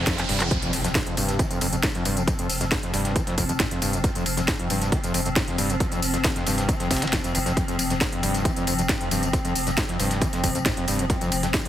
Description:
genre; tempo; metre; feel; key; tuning
driving peak-time techno; 136 BPM; 4/4; straight; F minor; A4 = 440 Hz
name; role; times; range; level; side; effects
screaming distorted acid line; riff; 0.0-11.7 s; E2 to F3; -28 LUFS; equal; distortion, analog chorus, sidechain pumping, digital delay
saturated sub bass; bass; 0.0-11.5 s; F1; -32 LUFS; equal; overdrive, sidechain pumping, low-pass filter
swarming drone; drone; 0.0-11.7 s; F3 to C4; -29 LUFS; left 2 dB; built-in reverb, sidechain pumping
riser and impact; sound effects; 0.0-2.3 s; none; -32 LUFS; right 2 dB; none
dusty soul sampler-style drum kit; drums; 0.1-11.6 s; hi-hat, ride cymbal, snare drum; -35 LUFS; right 1 dB; high-pass filter on snare, studio ambience, high-pass filter on cymbals, high-pass filter on hats
electronic kick drum; drums; 0.1-11.6 s; none; -27 LUFS; equal; studio ambience
techno drum kit; drums; 0.1-11.7 s; handclaps, hi-hat, snare drum, tambourine; -27 LUFS; equal; sidechain pumping on hats, studio ambience, sidechain pumping on perc
room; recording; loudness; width
light reverb, digital ambience; heavily compressed radio sound, multiband compression; -21 LUFS; side -12 dB against mid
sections
0.5-11.7 A section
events
riser 0.0-0.5; drum fill 0.2-0.5; drop 0.5-11.7; impact 0.5-2.3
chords
0.0 F5

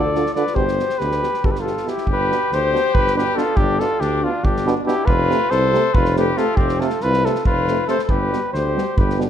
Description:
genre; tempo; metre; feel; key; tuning
balkan folk, Balkan brass band; 279 BPM (eighths); 7/8; straight; G mixolydian; A4 = 440 Hz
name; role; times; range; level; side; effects
mellow flugelhorn; melody; 0.0-9.2 s; F4 to D5; -20 LUFS; equal; none
warm trumpet; second line; 0.0-9.2 s; C4 to B4; -26 LUFS; left 6 dB; none
mellow tuba; bass; 0.0-9.3 s; F1 to D2; -23 LUFS; equal; none
clear euphonium; accompaniment; 0.1-9.3 s; B2 to D3; -26 LUFS; right 7 dB; none
warm euphonium; accompaniment; 0.2-9.3 s; G3 to G4; -28 LUFS; left 5 dB; none
natural country drum kit; percussion; 0.2-9.3 s; kick drum, snare drum; -22 LUFS; equal; none
room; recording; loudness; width
light reverb; minimal, uncompressed stereo recording; -16 LUFS; side -9 dB against mid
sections
0.0-2.1 A section; 2.1-9.3 B section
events
none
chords
0.0 Dm; 0.6 G; 5.1 F; 8.1 G

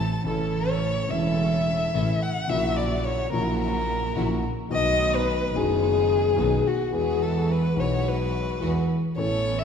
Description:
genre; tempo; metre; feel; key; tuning
tango; 108 BPM; 4/4; rubato; A major; A4 = 440 Hz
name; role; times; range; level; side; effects
warm violin; second line; 0.0-9.6 s; F#4 to A5; -25 LUFS; left 3 dB; none
dark baby grand piano; accompaniment; 0.0-9.6 s; E1 to A4; -27 LUFS; left 2 dB; none
clear studio string section; stabs; 0.0-9.6 s; G#3 to A4; -34 LUFS; right 4 dB; none
rich double bass; bass; 0.0-9.6 s; E1 to E2; -28 LUFS; right 2 dB; none
room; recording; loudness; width
wet scoring stage reverb, RT60 1.9 s; minimal, uncompressed stereo recording; -22 LUFS; side -7 dB against mid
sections
0.3-9.6 A section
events
violin solo 0.3-9.6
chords
0.3 A; 2.5 F#7/A#; 4.7 B7; 6.9 Eadd9

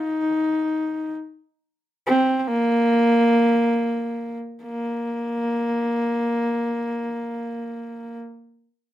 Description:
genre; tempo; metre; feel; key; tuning
mongolian traditional, Mongolian folk; free time; none; none; unclear; A4 = 441 Hz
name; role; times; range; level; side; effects
warm horsehead fiddle; solo; 0.0-8.2 s; Bb3 to Eb4; -20 LUFS; equal; none
room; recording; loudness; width
moderate studio reverb, RT60 0.6 s; rough home demo mix; -20 LUFS; side -13 dB against mid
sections
0.0-4.6 A section; 4.6-8.9 B section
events
slowing down 0.2-4.6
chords
none

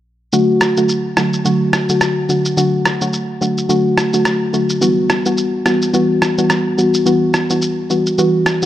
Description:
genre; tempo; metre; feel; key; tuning
afrobeats; 107 BPM; 4/4; swing 58% on 16ths; D major; A4 = 439 Hz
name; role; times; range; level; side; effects
soft round pluck; accompaniment; 0.3-8.7 s; D3 to F#4; -14 LUFS; equal; chorus
electronic shaker and rim click; drums; 0.3-8.7 s; none; -19 LUFS; equal; none
room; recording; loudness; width
moderate plate reverb, RT60 2.8 s; faint mains hum; -13 LUFS; side -12 dB against mid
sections
0.3-8.7 A section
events
none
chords
0.3 D; 4.8 Emadd9

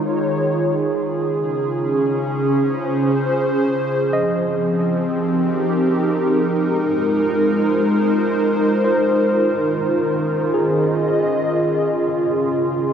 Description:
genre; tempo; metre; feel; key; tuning
ambient; 67 BPM; 3/4; straight; Ab major; A4 = 437 Hz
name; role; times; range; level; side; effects
airy breathy pad; sustained chords; 0.0-12.9 s; Db3 to C6; -17 LUFS; equal; chorus
barky tine electric piano; arpeggios; 4.1-12.9 s; Ab4 to Eb5; -25 LUFS; equal; diffuse ambient delay
room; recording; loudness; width
wet huge ambient reverb, RT60 7.9 s; none; -16 LUFS; side -8 dB against mid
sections
0.0-12.9 A section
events
none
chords
0.0 Eb9sus4; 1.3 Dbmaj7; 4.0 Fm11; 6.7 Ab69; 9.3 Eb9sus4; 12.0 Dbmaj7

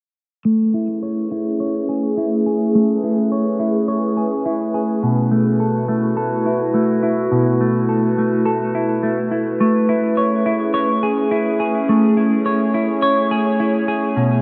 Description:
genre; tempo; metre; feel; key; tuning
dream pop; 105 BPM; 4/4; straight; A major; A4 = 441 Hz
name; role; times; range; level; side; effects
warbly tape-like pad; sustained chords; 1.1-14.4 s; A3 to C#5; -22 LUFS; equal; chorus, built-in reverb, phaser, low-pass filter
semi-hollow electric guitar; arpeggios; 0.5-14.4 s; B2 to C#5; -20 LUFS; equal; subtle chorus, low-pass filter, tape echo
room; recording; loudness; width
wet huge ambient reverb, RT60 4.0 s; dark, warm production; -18 LUFS; mono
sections
0.5-14.4 A section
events
filter sweep 0.5-14.4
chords
0.5 Amaj9; 5.0 B7sus4; 9.6 Amaj9

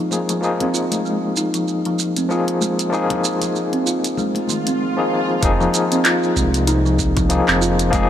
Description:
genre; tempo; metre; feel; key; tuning
organic downtempo; 96 BPM; 4/4; swing 57% on 16ths; F minor pentatonic; A4 = 442 Hz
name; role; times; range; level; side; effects
overdriven tine electric piano; accompaniment; 0.0-8.1 s; F3 to Ab4; -21 LUFS; left 3 dB; fast tremolo, sidechain pumping, ping-pong delay
kalimba; arpeggios; 0.0-8.0 s; Eb3 to F4; -22 LUFS; right 2 dB; ping-pong delay
deep house drum kit; drums; 0.1-8.1 s; handclaps, hi-hat, shaker; -22 LUFS; right 2 dB; none
congas; percussion; 0.1-4.8 s; none; -31 LUFS; left 4 dB; none
swell; sound effects; 4.4-5.4 s; none; -29 LUFS; equal; none
smooth synth bass; bass; 5.4-8.1 s; F1 to C2; -20 LUFS; right 1 dB; sidechain pumping
electronic kick drum; drums; 5.4-8.1 s; none; -22 LUFS; right 1 dB; none
room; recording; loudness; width
light reverb, digital ambience; none; -16 LUFS; side -10 dB against mid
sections
0.0-5.4 A section; 5.4-8.1 B section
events
filter sweep on kalimba 0.0-5.4; swell 4.4-5.4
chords
0.0 Fm7

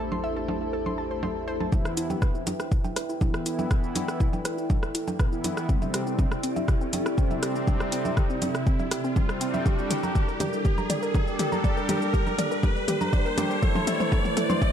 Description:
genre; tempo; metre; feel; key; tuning
melodic techno; 121 BPM; 4/4; straight; E minor; A4 = 440 Hz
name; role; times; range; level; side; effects
dark analog pad; sustained chords; 0.0-14.7 s; G3 to A5; -35 LUFS; right 2 dB; chorus, sidechain pumping
woody wave-folded pluck; arpeggios; 0.0-14.7 s; C4 to C6; -33 LUFS; right 1 dB; chorus, sidechain pumping, tape echo
brassy analog pad; stabs; 0.0-14.2 s; C3 to A4; -33 LUFS; left 1 dB; chorus, tremolo, sidechain pumping, tape echo
tight sequencer bass; bass; 0.0-1.7 s; A1; -39 LUFS; equal; sidechain pumping
bowed-like drone; drone; 0.0-1.8 s; E2; -46 LUFS; equal; none
granular cloud pad; texture; 0.0-14.7 s; C3 to G5; -35 LUFS; left 1 dB; built-in reverb, sidechain pumping
deep house drum kit; drums; 0.1-14.7 s; congas, hi-hat, rim click, shaker, toms; -30 LUFS; equal; sidechain pumping on perc, low-pass filter on perc, sidechain pumping on toms, low-pass filter on toms, low-pass filter on snare, sidechain pumping on hats, low-pass filter on hats
electronic kick drum; drums; 1.7-14.7 s; none; -24 LUFS; equal; none
riser; sound effects; 4.5-14.7 s; none; -34 LUFS; equal; none
room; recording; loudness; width
light reverb; none; -23 LUFS; side -9 dB against mid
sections
0.0-1.7 A section; 1.7-14.7 B section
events
filter sweep on analog synth pad 0.0-1.7; build-up 1.7-14.7; drum fill 1.7-14.7; filter sweep on synth pluck 1.7-14.7; riser 4.5-14.7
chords
0.0 Am; 1.7 Em; 5.7 C; 9.7 Gm; 13.6 Am

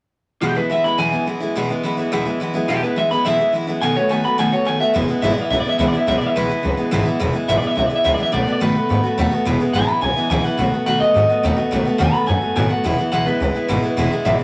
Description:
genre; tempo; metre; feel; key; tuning
rockabilly; 213 BPM; 4/4; straight; E major; A4 = 440 Hz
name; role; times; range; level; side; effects
electric guitar through a small old amp; melody; 0.4-14.4 s; G4 to B5; -22 LUFS; equal; none
picked steel-string acoustic guitar; accompaniment; 0.4-14.4 s; E2 to F#4; -22 LUFS; equal; none
upright bass; bass; 4.9-14.4 s; E1 to B2; -25 LUFS; equal; none
room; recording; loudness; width
wet studio reverb, RT60 1.0 s; none; -19 LUFS; mono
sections
0.4-4.9 A section; 4.9-14.0 B section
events
none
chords
0.4 E; 3.8 B7; 4.9 E; 8.3 B7; 9.5 E; 10.6 B7; 12.8 E

